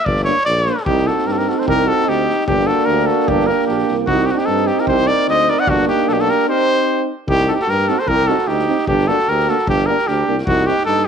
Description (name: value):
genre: balkan folk, Balkan brass band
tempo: 150 BPM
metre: 2/4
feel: straight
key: C dorian sharp4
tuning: A4 = 440 Hz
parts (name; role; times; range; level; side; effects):
- warm trumpet; melody; 0.0-11.1 s; F#4 to F#5; -17 LUFS; left 1 dB; none
- warm tuba; bass; 0.1-11.1 s; G1 to G2; -21 LUFS; left 1 dB; none
- street-band drum kit; percussion; 0.1-11.0 s; kick drum, snare drum; -28 LUFS; left 1 dB; none
- mellow euphonium; accompaniment; 0.3-10.7 s; Bb3 to C4; -22 LUFS; right 15 dB; none
- warm euphonium; accompaniment; 0.3-10.8 s; D4 to Eb4; -24 LUFS; left 14 dB; none
- mellow flugelhorn; second line; 0.9-11.1 s; D4 to D5; -22 LUFS; right 11 dB; none
room: moderate spring reverb, RT60 1.4 s, small room ambience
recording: 1960s-style stereo with parts hard left and right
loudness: -14 LUFS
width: side -7 dB against mid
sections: 0.9-7.3 A section; 7.3-11.1 A section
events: none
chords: 0.1 Gm; 0.9 Cm; 2.5 Gm; 4.1 Cm; 5.7 Gm; 6.5 Cm; 8.9 Gm; 10.5 Cm